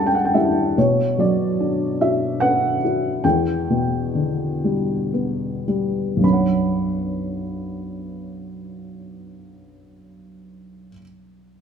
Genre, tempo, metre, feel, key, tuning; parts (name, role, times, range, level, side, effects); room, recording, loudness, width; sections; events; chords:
classical, lyrical solo piano; 35-50 BPM (dotted quarters); 6/8; rubato; B minor; A4 = 442 Hz
felt-muted upright piano; solo; 0.0-11.6 s; B1 to B5; -19 LUFS; equal
moderate scoring stage reverb, RT60 1.9 s; minimal, uncompressed stereo recording; -18 LUFS; side -7 dB against mid
0.8-6.2 A section; 6.2-9.5 B section
slowing down 0.8-6.2
0.0 Em7; 0.8 Bm; 3.2 Em7; 6.2 Bmadd9